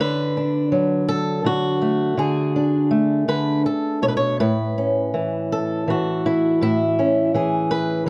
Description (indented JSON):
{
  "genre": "folk, solo fingerstyle acoustic guitar",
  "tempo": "55 BPM (dotted quarters)",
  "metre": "6/8",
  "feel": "rubato",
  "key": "unclear",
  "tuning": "A4 = 440 Hz",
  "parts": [
    { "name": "fingerpicked steel-string acoustic guitar", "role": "solo", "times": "0.0-8.1 s", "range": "A2 to C#5", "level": "-21 LUFS", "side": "equal", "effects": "none" }
  ],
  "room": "little or no reverb",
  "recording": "close, detailed microphones",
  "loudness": "-21 LUFS",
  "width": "mono",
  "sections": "0.0-8.1 A section",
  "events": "none",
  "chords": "0.0 D; 4.4 A",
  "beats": "| 0.00 1.08 | 2.17 3.27 | 4.39 5.51 | 6.61 7.71"
}